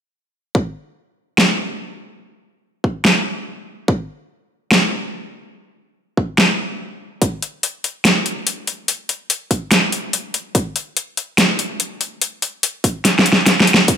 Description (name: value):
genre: heavy wobble dubstep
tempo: 144 BPM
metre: 4/4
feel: swing 54% on 16ths, half-time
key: none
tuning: none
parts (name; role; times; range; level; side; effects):
- electronic kick drum; drums; 0.5-14.0 s; none; -18 LUFS; equal; high-pass filter on kick
- dubstep drum kit; drums; 1.4-14.0 s; hi-hat, snare drum; -15 LUFS; equal; none
room: moderate lush hall reverb, RT60 1.6 s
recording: none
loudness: -16 LUFS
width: side -8 dB against mid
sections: 0.5-14.0 A section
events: drum fill 13.0-13.9; kick drops out 13.5-13.9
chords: none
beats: | 0.55 0.97 1.38 1.80 | 2.22 2.63 3.05 3.47 | 3.88 4.30 4.72 5.13 | 5.55 5.97 6.38 6.80 | 7.22 7.63 8.05 8.47 | 8.88 9.30 9.72 10.13 | 10.55 10.97 11.38 11.80 | 12.22 12.63 13.05 13.47 | 13.88